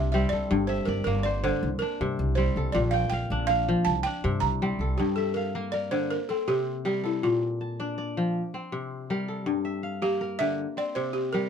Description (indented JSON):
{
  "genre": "west african traditional",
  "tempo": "107 BPM (dotted quarters)",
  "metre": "12/8",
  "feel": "straight",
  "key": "unclear",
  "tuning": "A4 = 439 Hz",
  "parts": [
    { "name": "balafon", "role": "melody", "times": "0.0-11.5 s", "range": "E4 to Bb5", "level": "-28 LUFS", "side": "right 3 dB", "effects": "none" },
    { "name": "kora", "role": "arpeggios", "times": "0.0-11.5 s", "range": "G2 to A5", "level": "-28 LUFS", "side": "left 2 dB", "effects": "none" },
    { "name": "upright bass", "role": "bass", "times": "0.0-4.9 s", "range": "G1 to G2", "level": "-28 LUFS", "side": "equal", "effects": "none" }
  ],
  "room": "light reverb",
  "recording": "minimal, uncompressed stereo recording",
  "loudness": "-25 LUFS",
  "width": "side -7 dB against mid",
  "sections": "0.0-5.0 A section; 5.0-11.5 B section",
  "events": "balafon solo 0.0-5.0",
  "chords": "0.0 C; 0.5 Gm; 1.6 C5; 2.7 Bb; 3.9 C5; 5.0 Gm; 6.1 C5; 7.2 Bb; 8.3 C5; 9.5 Gm; 10.6 C5"
}